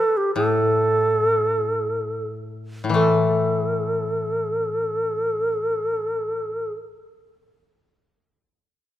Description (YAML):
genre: japanese traditional, Japanese chamber music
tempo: free time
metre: none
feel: none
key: unclear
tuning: A4 = 440 Hz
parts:
  - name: bright reedy shakuhachi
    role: melody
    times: 0.0-6.7 s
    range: G4 to A4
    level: -21 LUFS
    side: right 1 dB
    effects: none
  - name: koto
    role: accompaniment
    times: 0.4-6.8 s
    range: A2 to A3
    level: -25 LUFS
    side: left 3 dB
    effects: none
room: moderate scoring stage reverb, RT60 1.7 s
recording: none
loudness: -20 LUFS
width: side -12 dB against mid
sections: 0.0-3.0 A section; 3.0-7.6 B section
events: slowing down 0.0-3.0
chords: none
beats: free time